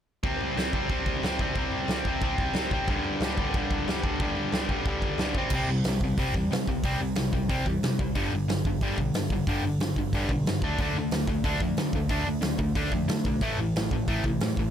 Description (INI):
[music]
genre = punk rock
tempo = 182 BPM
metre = 4/4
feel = straight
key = C major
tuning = A4 = 440 Hz
[part]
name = distorted electric guitar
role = riff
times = 0.2-14.7 s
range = G2 to D4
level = -28 LUFS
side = equal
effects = overdrive
[part]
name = big rock drum kit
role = drums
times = 0.2-14.7 s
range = crash cymbal, hi-hat, kick drum, snare drum, toms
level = -29 LUFS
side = equal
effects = none
[part]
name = hollow-body short-scale picked electric bass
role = bass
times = 5.5-14.7 s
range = G1 to D3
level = -31 LUFS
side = equal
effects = none
[sound]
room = little or no reverb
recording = none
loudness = -25 LUFS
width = side -9 dB against mid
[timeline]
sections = 0.2-5.5 A section; 5.5-14.7 B section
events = none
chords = 0.2 C5; 2.9 G5; 5.4 C5; 8.2 G5; 10.6 D5; 13.4 A5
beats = | 0.23 0.56 0.90 1.23 | 1.56 1.89 2.22 2.55 | 2.88 3.21 3.54 3.87 | 4.20 4.53 4.86 5.19 | 5.52 5.85 6.18 6.51 | 6.84 7.17 7.50 7.83 | 8.16 8.48 8.81 9.14 | 9.47 9.80 10.13 10.46 | 10.79 11.12 11.45 11.78 | 12.11 12.44 12.77 13.10 | 13.43 13.76 14.09 14.42